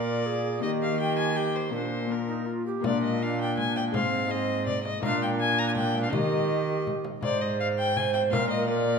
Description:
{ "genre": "classical, renaissance-style consort dance", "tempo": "164 BPM", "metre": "3/4", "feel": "straight", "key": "Bb mixolydian", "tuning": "A4 = 440 Hz", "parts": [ { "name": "rich violin", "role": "melody", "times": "0.0-9.0 s", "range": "Bb4 to Bb5", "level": "-30 LUFS", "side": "left 5 dB", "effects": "none" }, { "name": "mellow tenor recorder", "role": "second line", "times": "0.0-9.0 s", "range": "C4 to C5", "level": "-30 LUFS", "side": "right 6 dB", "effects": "none" }, { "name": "Celtic harp", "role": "accompaniment", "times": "0.0-9.0 s", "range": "Ab2 to C5", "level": "-32 LUFS", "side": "left 9 dB", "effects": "none" }, { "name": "warm cello", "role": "bass", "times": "0.0-9.0 s", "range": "Ab2 to Eb3", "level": "-31 LUFS", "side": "right 3 dB", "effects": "none" }, { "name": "frame drum", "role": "percussion", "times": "2.8-8.5 s", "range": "none", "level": "-34 LUFS", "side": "left 2 dB", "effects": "none" } ], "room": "wet recital hall reverb, RT60 1.4 s", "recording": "none", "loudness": "-24 LUFS", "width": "side -5 dB against mid", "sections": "0.0-2.8 A section; 2.8-9.0 A section", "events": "none", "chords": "0.0 Bb; 0.6 Eb; 1.7 Bb; 3.9 Ab; 5.0 Bb; 6.1 Eb; 7.2 Ab; 8.3 Bb" }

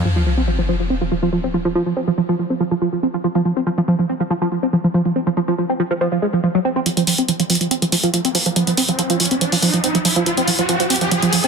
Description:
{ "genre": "driving peak-time techno", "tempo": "141 BPM", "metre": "4/4", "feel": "straight", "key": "unclear", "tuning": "A4 = 440 Hz", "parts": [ { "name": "tight sequenced synth", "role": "riff", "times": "0.1-11.5 s", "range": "F3 to C4", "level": "-17 LUFS", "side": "right 2 dB", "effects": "chorus, overdrive, digital delay" }, { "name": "sub drop and riser", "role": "sound effects", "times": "0.1-1.8, 8.0-11.5 s", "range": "none", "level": "-22 LUFS", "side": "equal", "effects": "none" }, { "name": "electronic hi-hat", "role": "drums", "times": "6.9-11.5 s", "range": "none", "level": "-21 LUFS", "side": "equal", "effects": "high-pass filter on hats, high-pass filter on snare, high-pass filter on room" } ], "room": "light reverb", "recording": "dense, heavily limited modern master", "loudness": "-16 LUFS", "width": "side -5 dB against mid", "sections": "0.1-6.9 A section; 6.9-11.5 B section", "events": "impact 0.1-1.8; filter sweep on synth arpeggio sound 0.1-6.9, 6.9-11.5; build-up 6.9-11.5; riser 8.0-11.5", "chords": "none" }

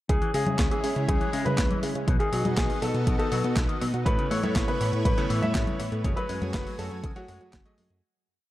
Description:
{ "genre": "italo disco", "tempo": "121 BPM", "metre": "4/4", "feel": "straight", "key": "C# minor", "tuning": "A4 = 439 Hz", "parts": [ { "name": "dark grand piano", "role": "melody", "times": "0.1-7.6 s", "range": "F#4 to E5", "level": "-31 LUFS", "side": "left 1 dB", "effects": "digital delay" }, { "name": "lush unison pad", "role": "sustained chords", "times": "0.1-8.0 s", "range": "F#3 to G#5", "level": "-35 LUFS", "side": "equal", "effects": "chorus" }, { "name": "electric guitar with an envelope filter", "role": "arpeggios", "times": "0.1-7.8 s", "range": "B2 to G#3", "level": "-35 LUFS", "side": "left 3 dB", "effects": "digital delay" }, { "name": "chorused synth bass", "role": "bass", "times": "0.1-8.0 s", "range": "F#1 to C#3", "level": "-30 LUFS", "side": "equal", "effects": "none" }, { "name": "clean 12-bit digital drum machine", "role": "drums", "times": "0.1-8.0 s", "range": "congas, handclaps, hi-hat, snare drum", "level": "-32 LUFS", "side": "left 1 dB", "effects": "none" }, { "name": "electronic kick drum", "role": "drums", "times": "0.1-7.6 s", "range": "none", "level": "-27 LUFS", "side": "equal", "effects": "overdrive" }, { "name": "clear electric grand piano", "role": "stabs", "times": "4.1-8.0 s", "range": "A2 to D#5", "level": "-35 LUFS", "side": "right 3 dB", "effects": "none" } ], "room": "light reverb, digital ambience", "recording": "dark, warm production", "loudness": "-24 LUFS", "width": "side -15 dB against mid", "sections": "0.1-8.0 chorus", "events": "fade-out 5.4-8.0", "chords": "0.1 C#m; 2.1 B; 4.1 Aadd9; 6.0 F#madd9" }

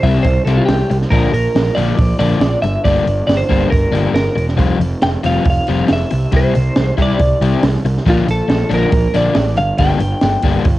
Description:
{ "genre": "indie rock", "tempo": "138 BPM", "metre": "4/4", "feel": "straight", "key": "G dorian", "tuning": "A4 = 440 Hz", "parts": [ { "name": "twelve-string electric guitar", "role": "melody", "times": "0.0-10.8 s", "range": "F4 to G5", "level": "-19 LUFS", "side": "right 1 dB", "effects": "none" }, { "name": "crunchy overdriven guitar", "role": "riff", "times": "0.0-10.7 s", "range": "C3 to F4", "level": "-18 LUFS", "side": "left 5 dB", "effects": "cassette tape" }, { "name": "fuzz picked electric bass", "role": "bass", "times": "0.0-10.8 s", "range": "E1 to C2", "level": "-17 LUFS", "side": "right 1 dB", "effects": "overdrive" }, { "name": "compact cocktail drum kit", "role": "drums", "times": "0.0-10.8 s", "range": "hi-hat, kick drum, snare drum", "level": "-17 LUFS", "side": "right 1 dB", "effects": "cassette tape" } ], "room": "studio ambience", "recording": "home recording on cassette", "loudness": "-12 LUFS", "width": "side -16 dB against mid", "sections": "0.0-10.8 A section", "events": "none", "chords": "0.0 C; 1.1 Bb; 2.6 Gm; 4.6 Fsus2; 6.1 C; 8.1 Bb; 9.6 Gm" }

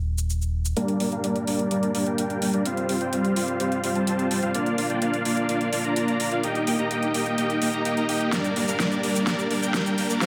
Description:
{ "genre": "EDM, festival progressive house", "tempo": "127 BPM", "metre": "4/4", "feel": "straight", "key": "G minor", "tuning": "A4 = 438 Hz", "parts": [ { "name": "fat analog bass", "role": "bass", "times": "0.0-0.7 s", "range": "Eb1", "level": "-26 LUFS", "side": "equal", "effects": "none" }, { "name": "big-room dance drum kit", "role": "drums", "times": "0.2-10.3 s", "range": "hi-hat, shaker, snare drum", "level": "-32 LUFS", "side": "equal", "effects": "overdrive" }, { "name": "dense compressed supersaw", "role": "riff", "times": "0.8-10.3 s", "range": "G3 to Bb5", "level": "-25 LUFS", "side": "equal", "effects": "low-pass filter, digital delay" } ], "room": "moderate huge ambient reverb, RT60 8.4 s", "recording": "high-pass filter", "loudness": "-25 LUFS", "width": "mono", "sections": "0.8-10.3 A section", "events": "build-up 0.8-10.3; filter sweep on supersaw synth 0.8-10.3; filter sweep 0.8-10.3; drum fill 8.3-10.3", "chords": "0.0 N.C.; 0.8 Gm; 2.7 Fsus2; 4.5 Bb; 6.4 Eb; 8.3 Gm" }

